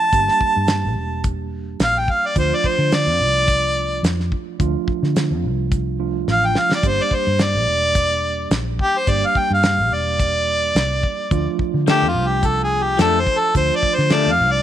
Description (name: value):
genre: straight-eighth soul blues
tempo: 107 BPM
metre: 4/4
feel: swing 55% on 16ths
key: D minor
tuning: A4 = 439 Hz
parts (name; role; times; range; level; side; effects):
- warm harmonica; melody; 0.0-14.6 s; F4 to A5; -18 LUFS; equal; none
- tine electric piano; accompaniment; 0.0-14.6 s; F3 to G4; -27 LUFS; right 15 dB; medium stereo tremolo
- vintage muted fingered electric bass; bass; 0.1-14.6 s; E1 to D3; -22 LUFS; left 1 dB; none
- damped 70s drum kit; drums; 0.1-14.3 s; hi-hat, kick drum, snare drum; -21 LUFS; equal; none
- electric guitar through a small old amp; stabs; 11.9-14.3 s; F3 to D4; -24 LUFS; left 13 dB; none
room: light reverb, small room ambience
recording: 1960s-style stereo with parts hard left and right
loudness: -16 LUFS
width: side -11 dB against mid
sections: 0.0-14.6 A section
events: harmonica solo 0.0-14.6; drum fill 6.3-6.8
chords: 0.1 Gm; 2.4 Dm; 6.8 Gm; 11.3 Dm